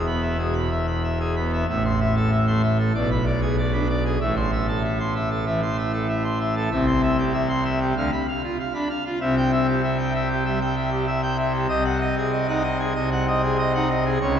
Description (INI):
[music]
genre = classical, organ toccata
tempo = 96 BPM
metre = 4/4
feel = straight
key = A minor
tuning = A4 = 440 Hz
[part]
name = pipe organ, full organ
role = solo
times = 0.0-14.4 s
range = E1 to C6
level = -20 LUFS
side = equal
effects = none
[sound]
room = wet cathedral reverb, RT60 4.2 s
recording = heard from further back in the room, nothing above 7.8 kHz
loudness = -20 LUFS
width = side -8 dB against mid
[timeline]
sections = 0.0-1.7 A section; 1.7-14.4 B section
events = none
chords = 0.0 E; 1.7 Am; 3.0 G#dim/B; 4.2 Am; 6.7 C; 8.0 Bdim/D; 9.2 C; 11.7 G#7/B#